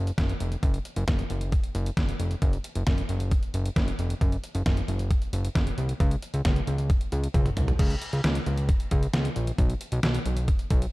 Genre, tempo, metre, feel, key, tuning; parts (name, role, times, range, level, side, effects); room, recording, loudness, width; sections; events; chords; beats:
synth-pop; 134 BPM; 4/4; straight; A4 = 442 Hz
fat analog bass; bass; 0.0-10.9 s; F1 to Db2; -27 LUFS; equal
detuned 8-bit digital drum machine; drums; 0.1-10.9 s; crash cymbal, hi-hat, kick drum, snare drum, toms; -26 LUFS; equal; overdrive
little or no reverb; dark, warm production; -24 LUFS; side -20 dB against mid
0.0-7.8 A section; 7.8-10.9 B section
drum fill 7.3-7.8
0.18 | 0.63 1.08 1.53 1.97 | 2.42 2.87 3.32 3.77 | 4.21 4.66 5.11 5.56 | 6.00 6.45 6.90 7.35 | 7.79 8.24 8.69 9.14 | 9.59 10.03 10.48